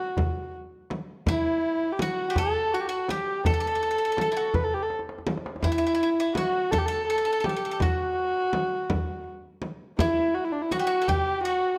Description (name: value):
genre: Persian modal ensemble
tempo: 55 BPM (dotted quarters)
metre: 6/8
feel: straight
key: unclear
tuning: A4 = 440 Hz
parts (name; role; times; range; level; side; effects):
- warm kamancheh; melody; 0.0-11.8 s; D4 to B4; -28 LUFS; equal; none
- bowl-back mandolin; second line; 0.0-11.8 s; E4 to A4; -35 LUFS; equal; none
- frame drum; percussion; 0.2-11.2 s; none; -33 LUFS; equal; none
- tombak; percussion; 0.2-11.2 s; none; -33 LUFS; equal; none
room: moderate recital hall reverb, RT60 1.4 s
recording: none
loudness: -26 LUFS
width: mono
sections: 0.0-11.8 A section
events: drum fill 4.9-5.6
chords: none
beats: 0.18 | 1.27 2.36 | 3.44 4.54 | 5.62 6.71 | 7.80 8.89 | 9.98 11.07